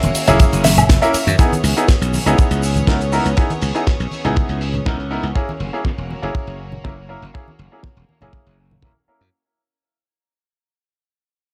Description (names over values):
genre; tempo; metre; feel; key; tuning
nu-disco, nu disco; 121 BPM; 4/4; straight; C# dorian; A4 = 439 Hz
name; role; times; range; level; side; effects
direct-recorded clean electric guitar; melody; 0.0-1.4 s; E5; -23 LUFS; equal; tape echo
clear studio violin section; sustained chords; 0.0-9.3 s; A#3 to C#5; -30 LUFS; equal; sidechain pumping, low-pass filter
glassy slap bass; bass; 0.0-9.3 s; E1 to F#2; -22 LUFS; equal; none
damped 70s drum kit; drums; 0.0-9.3 s; hi-hat, ride cymbal, shaker, snare drum, woodblock; -25 LUFS; equal; low-pass filter on cymbals, studio ambience, low-pass filter on hats, low-pass filter on snare, low-pass filter on perc, low-pass filter on room
congas; percussion; 0.0-8.9 s; none; -27 LUFS; equal; none
bright grand piano; accompaniment; 0.3-9.2 s; A#3 to A#4; -24 LUFS; equal; low-pass filter, tape echo
kick drum; drums; 0.4-8.9 s; none; -18 LUFS; equal; studio ambience
room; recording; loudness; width
little or no reverb; none; -17 LUFS; mono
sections
0.0-1.4 A section; 1.4-9.3 B section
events
drop 0.0-1.4; fade-out 1.4-9.3; filter sweep on drum 1.4-9.3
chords
0.0 F#7; 1.4 C#m7; 5.4 F#7